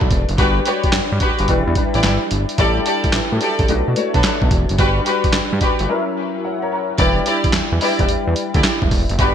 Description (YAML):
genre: R&B, new jack swing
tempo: 109 BPM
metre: 4/4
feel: swing 66% on 16ths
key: unclear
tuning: A4 = 445 Hz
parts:
  - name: warm grand piano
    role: accompaniment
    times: 0.0-9.3 s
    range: F#3 to A#5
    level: -21 LUFS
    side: left 3 dB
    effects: ensemble chorus
  - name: fat analog bass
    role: bass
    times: 0.0-9.3 s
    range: E1 to B2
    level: -20 LUFS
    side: equal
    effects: none
  - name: boom bap sampler-style drum kit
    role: drums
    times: 0.0-9.3 s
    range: handclaps, hi-hat, kick drum, snare drum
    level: -18 LUFS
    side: right 1 dB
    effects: gated reverb
  - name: warm studio string section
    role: stabs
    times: 0.4-9.3 s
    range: D4 to D5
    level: -21 LUFS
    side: equal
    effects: ping-pong delay
room: light reverb, digital ambience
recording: bright 1980s-style digital production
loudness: -15 LUFS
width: side -8 dB against mid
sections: 0.0-7.0 A section; 7.0-9.3 B section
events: grand piano fill 5.3-7.0; break 5.9-7.0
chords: 0.4 Gmaj7; 1.5 Em7; 2.6 A7sus4; 3.7 Bm7; 4.8 Gmaj7; 5.9 F#7; 7.0 Em7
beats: | 0.38 0.93 1.48 2.03 | 2.58 3.13 3.69 4.24 | 4.79 5.34 5.89 6.44 | 6.99 7.54 8.09 8.64 | 9.19